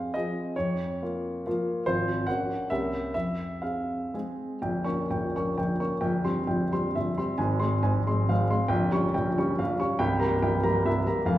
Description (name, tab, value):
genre	classical, romantic triple-time dance for piano with dotted rhythms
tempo	116-154 BPM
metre	3/4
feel	rubato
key	F minor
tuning	A4 = 441 Hz
part	warm grand piano	solo	0.0-11.4 s	Bb0 to Db6	-25 LUFS	equal	none
room	wet recital hall reverb, RT60 1.5 s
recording	heard from further back in the room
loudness	-25 LUFS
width	side -14 dB against mid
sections	0.0-4.6 A section; 4.6-11.4 B section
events	none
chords	0.0 Fm; 0.6 Bbm/F; 1.9 Fm/Ab; 2.3 Gb/Bb; 2.7 C7b9; 3.1 Fm; 4.6 Gdim/Bb; 6.0 C7/Bb; 7.4 Fm/Ab; 8.7 Gm7b5/Bb; 10.0 C7